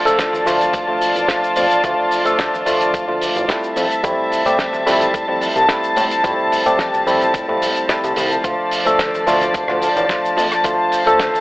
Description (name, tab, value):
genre	nu-disco, nu disco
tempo	109 BPM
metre	4/4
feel	straight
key	D minor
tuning	A4 = 441 Hz
part	tine electric piano	accompaniment	0.0-11.4 s	F3 to A4	-18 LUFS	equal	tape echo
part	dark studio string section	sustained chords	0.0-11.4 s	F3 to A5	-18 LUFS	left 1 dB	sidechain pumping
part	fat analog bass	bass	0.1-11.3 s	D1 to A2	-25 LUFS	equal	none
part	damped 70s drum kit	drums	0.1-11.4 s	hi-hat, rim click, shaker, snare drum	-24 LUFS	right 1 dB	studio reverb
part	congas and tube shaker	percussion	0.1-11.4 s	none	-36 LUFS	equal	none
part	electronic kick drum	drums	0.2-11.3 s	none	-24 LUFS	equal	overdrive, studio reverb
room	moderate plate reverb, RT60 1.5 s, small room ambience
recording	telephone sound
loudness	-14 LUFS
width	side -20 dB against mid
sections	0.0-11.4 A section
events	none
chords	0.0 Dm; 3.8 Fmaj7; 8.4 Dm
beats	0.19 0.74 1.29 | 1.84 2.39 2.94 3.49 | 4.04 4.59 5.14 5.69 | 6.24 6.79 7.34 7.89 | 8.45 9.00 9.55 10.10 | 10.65 11.20